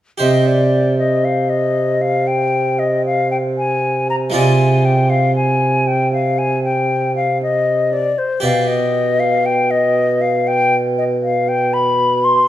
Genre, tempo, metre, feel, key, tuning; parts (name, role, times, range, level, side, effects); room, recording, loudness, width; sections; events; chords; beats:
classical, baroque-style sonata movement with continuo; 58 BPM; 4/4; rubato; C minor; A4 = 440 Hz
hollow concert flute; melody; 0.2-12.5 s; C5 to C6; -17 LUFS; left 3 dB
harpsichord; accompaniment; 0.2-12.5 s; B2 to D5; -20 LUFS; right 2 dB
mellow bassoon; bass; 0.2-12.5 s; B2 to C3; -18 LUFS; right 2 dB
wet recital hall reverb, RT60 1.5 s; -14 LUFS; side -12 dB against mid
0.2-12.5 A section
0.2 C5; 4.3 Dm7b5/C; 8.4 G/B
| 0.20 1.24 2.28 3.31 | 4.34 5.35 6.38 7.41 | 8.43 9.45 10.47 11.49